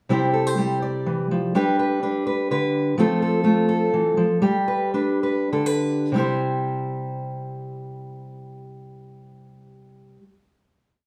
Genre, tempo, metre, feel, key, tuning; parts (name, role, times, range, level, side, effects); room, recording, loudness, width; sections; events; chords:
folk, solo fingerstyle acoustic guitar; 97-128 BPM; 3/4; rubato; C major; A4 = 440 Hz
fingerpicked steel-string acoustic guitar; solo; 0.1-10.2 s; C3 to D5; -23 LUFS; equal
wet studio reverb, RT60 0.7 s; heard from further back in the room, small room ambience; -22 LUFS; mono
0.1-6.1 interlude; 6.1-9.8 final chord
slowing down 3.0-6.1
0.1 C; 1.6 G; 3.0 F; 4.4 G; 6.1 C